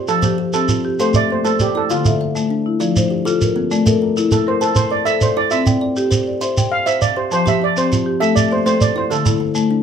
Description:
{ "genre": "southern african traditional, mbira-style interlocking cycle", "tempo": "133 BPM (dotted quarters)", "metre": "12/8", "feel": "straight", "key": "F major", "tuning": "A4 = 440 Hz", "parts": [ { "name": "steel pan", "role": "melody", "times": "0.0-9.7 s", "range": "F4 to F5", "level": "-19 LUFS", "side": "right 5 dB", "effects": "none" }, { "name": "kalimba", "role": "arpeggios", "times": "0.0-9.8 s", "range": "D3 to C6", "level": "-22 LUFS", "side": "left 2 dB", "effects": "none" }, { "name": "marimba with medium mallets", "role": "arpeggios", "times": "0.0-9.8 s", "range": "D3 to G5", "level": "-19 LUFS", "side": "left 4 dB", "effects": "none" }, { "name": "shekere", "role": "percussion", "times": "0.1-9.7 s", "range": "none", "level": "-20 LUFS", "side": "right 3 dB", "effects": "none" } ], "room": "light reverb", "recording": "close, detailed microphones", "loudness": "-14 LUFS", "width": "side -7 dB against mid", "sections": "0.1-9.8 A section", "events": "none", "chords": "0.1 F; 1.0 Am; 1.9 Dm; 2.8 F; 3.7 Am; 5.5 C; 7.3 F; 8.2 Am; 9.1 Dm", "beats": "| 0.09 0.54 1.00 1.45 | 1.90 2.36 2.81 3.26 | 3.71 4.16 4.62 5.07 | 5.52 5.97 6.42 6.87 | 7.31 7.76 8.21 8.66 | 9.11 9.56" }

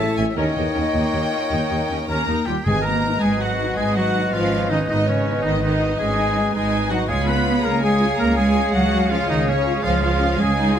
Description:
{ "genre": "cinematic", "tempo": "108 BPM (dotted quarters)", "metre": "12/8", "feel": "straight", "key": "G# dorian", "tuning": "A4 = 440 Hz", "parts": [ { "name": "warm chamber violin section", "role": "melody", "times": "0.0-10.8 s", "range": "C#5 to B5", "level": "-29 LUFS", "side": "left 1 dB", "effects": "none" }, { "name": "bright clarinet", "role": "second line", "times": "0.0-10.8 s", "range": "A4 to C#5", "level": "-30 LUFS", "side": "left 2 dB", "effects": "none" }, { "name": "clear oboe", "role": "second line", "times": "0.0-10.8 s", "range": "C#4 to E5", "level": "-28 LUFS", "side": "right 1 dB", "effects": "none" }, { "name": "mellow concert flute", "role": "second line", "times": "0.0-10.8 s", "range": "D#5 to E#5", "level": "-28 LUFS", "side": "left 4 dB", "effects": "none" }, { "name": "warm studio violin section", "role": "second line", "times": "0.0-10.8 s", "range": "C#5 to B5", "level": "-29 LUFS", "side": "left 2 dB", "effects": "none" }, { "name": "rich symphonic viola section", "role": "accompaniment", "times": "0.0-10.8 s", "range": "A3 to A#4", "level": "-29 LUFS", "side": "right 1 dB", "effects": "none" }, { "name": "warm French horn section", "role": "sustained chords", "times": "0.0-10.8 s", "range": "A3 to E#4", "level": "-30 LUFS", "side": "left 5 dB", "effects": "none" }, { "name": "clear trumpet section", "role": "stabs", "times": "0.0-10.8 s", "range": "C#4 to A#5", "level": "-28 LUFS", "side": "equal", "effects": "none" }, { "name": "mellow tuba", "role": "bass", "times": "0.0-2.5 s", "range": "A1 to D#2", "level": "-28 LUFS", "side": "right 4 dB", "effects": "none" }, { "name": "rich symphonic double bass section", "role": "bass", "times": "0.0-10.8 s", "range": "G#1 to D#2", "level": "-25 LUFS", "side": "right 2 dB", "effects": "none" }, { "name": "warm symphonic cello section", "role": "bass", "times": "0.0-10.8 s", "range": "D#2 to B3", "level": "-23 LUFS", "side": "right 1 dB", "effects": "none" }, { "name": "timpani", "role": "percussion", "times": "2.7-3.2 s", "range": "G#2", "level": "-28 LUFS", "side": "left 1 dB", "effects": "none" } ], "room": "light reverb", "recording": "close, detailed microphones", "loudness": "-17 LUFS", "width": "side -9 dB against mid", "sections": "0.0-2.7 A section; 2.7-10.8 B section", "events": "none", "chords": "0.4 D#7; 2.7 G#m; 7.1 C#", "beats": "| 0.37 0.95 1.52 2.09 | 2.66 3.22 3.77 4.33 | 4.88 5.43 5.99 6.54 | 7.09 7.64 8.19 8.75 | 9.29 9.84 10.39" }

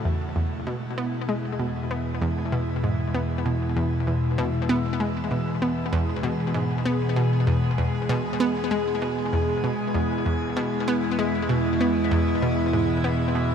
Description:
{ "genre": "ambient, sequencer-driven space music", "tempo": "97 BPM", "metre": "4/4", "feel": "straight", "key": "E major", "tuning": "A4 = 440 Hz", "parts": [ { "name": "evolving wavetable pad", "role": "sustained chords", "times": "0.0-13.5 s", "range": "B2 to G#4", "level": "-25 LUFS", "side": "equal", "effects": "chorus, built-in reverb, phaser" }, { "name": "analog pluck", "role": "riff", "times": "0.1-13.5 s", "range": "E2 to B3", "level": "-26 LUFS", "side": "equal", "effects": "chorus, ping-pong delay" }, { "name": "analog drone", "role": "bass", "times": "1.5-13.5 s", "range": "E2", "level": "-32 LUFS", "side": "equal", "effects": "chorus" } ], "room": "wet shimmer reverb, RT60 7.4 s", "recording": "none", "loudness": "-22 LUFS", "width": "side -7 dB against mid", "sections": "0.0-13.5 A section", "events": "none", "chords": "0.0 E", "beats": "| 0.05 0.67 1.29 1.91 | 2.52 3.14 3.76 4.38 | 5.00 5.62 6.24 6.85 | 7.47 8.09 8.71 9.33 | 9.95 10.56 11.18 11.80 | 12.42 13.04" }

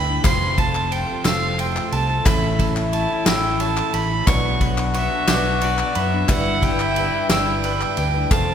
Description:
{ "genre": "indie folk with a building arrangement", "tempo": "60 BPM (dotted quarters)", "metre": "6/8", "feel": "straight", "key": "unclear", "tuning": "A4 = 440 Hz", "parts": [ { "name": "rich fiddle", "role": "melody", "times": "0.0-8.5 s", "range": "D5 to C#6", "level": "-25 LUFS", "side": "right 3 dB", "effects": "none" }, { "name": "felt-muted upright piano", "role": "accompaniment", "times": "0.0-8.5 s", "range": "F1 to E5", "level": "-30 LUFS", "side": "equal", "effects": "none" }, { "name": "picked twelve-string acoustic guitar", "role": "accompaniment", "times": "0.0-8.5 s", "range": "A2 to C#5", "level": "-31 LUFS", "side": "left 3 dB", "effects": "none" }, { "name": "warm chamber string section", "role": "sustained chords", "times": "0.0-8.5 s", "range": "G3 to B4", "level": "-33 LUFS", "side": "left 1 dB", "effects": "none" }, { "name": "mandolin", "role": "arpeggios", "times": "0.0-8.5 s", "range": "E5 to E6", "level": "-28 LUFS", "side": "right 2 dB", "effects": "none" }, { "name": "fingered electric bass", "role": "bass", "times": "0.0-8.5 s", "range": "F1 to F#2", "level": "-24 LUFS", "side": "equal", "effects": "none" }, { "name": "natural country drum kit", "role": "drums", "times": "0.2-8.5 s", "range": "kick drum, ride cymbal, snare drum", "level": "-23 LUFS", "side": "equal", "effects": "none" }, { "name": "group handclap", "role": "percussion", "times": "0.2-8.5 s", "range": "none", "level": "-31 LUFS", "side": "left 4 dB", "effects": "none" }, { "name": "tambourine", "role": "percussion", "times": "0.2-8.5 s", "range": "none", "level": "-38 LUFS", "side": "left 5 dB", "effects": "none" }, { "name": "warm trombone", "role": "second line", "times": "2.3-8.5 s", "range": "E4 to F#4", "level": "-26 LUFS", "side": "left 5 dB", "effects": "none" } ], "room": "wet church reverb, RT60 3.1 s", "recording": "recorded in a church or concert hall", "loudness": "-17 LUFS", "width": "side -8 dB against mid", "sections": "0.0-8.5 A section", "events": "none", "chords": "0.2 F; 2.3 A; 4.3 Bmadd9; 6.3 G6", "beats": "| 0.24 1.25 | 2.26 3.27 | 4.28 5.28 | 6.29 7.30 | 8.31" }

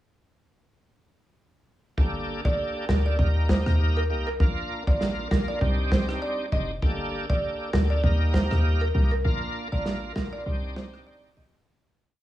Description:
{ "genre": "dancehall", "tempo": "99 BPM", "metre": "4/4", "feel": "swing 56% on 16ths", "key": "G minor", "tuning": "A4 = 440 Hz", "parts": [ { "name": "bright tonewheel organ", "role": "accompaniment", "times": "2.0-11.6 s", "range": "Bb3 to Bb4", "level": "-32 LUFS", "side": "equal", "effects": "overdrive, chorus vibrato, slow rotary speaker" }, { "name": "short 808-style bass", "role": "bass", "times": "2.0-11.6 s", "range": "F1 to Eb2", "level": "-25 LUFS", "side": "equal", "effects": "none" }, { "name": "warm soul drum kit", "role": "drums", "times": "2.0-11.1 s", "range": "kick drum, rim click, snare drum", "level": "-25 LUFS", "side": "equal", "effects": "none" }, { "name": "buzzing marimba with medium mallets", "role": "melody", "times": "2.5-11.5 s", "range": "Bb4 to Eb5", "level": "-32 LUFS", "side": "right 1 dB", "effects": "digital delay" } ], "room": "studio reverb", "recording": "small room ambience", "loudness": "-23 LUFS", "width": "side -14 dB against mid", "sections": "2.0-11.7 verse", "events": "break 9.2-11.7; fade-out 9.2-11.7", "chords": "2.0 Gmadd9; 3.2 Eb; 4.4 Bb; 5.6 Cmadd9; 6.8 Gmadd9; 8.0 Eb; 9.2 Bb; 10.5 Cmadd9", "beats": "| 1.98 2.58 3.19 3.79 | 4.40 5.01 5.61 6.22 | 6.83 7.43 8.04 8.64 | 9.25 9.86 10.46 11.07" }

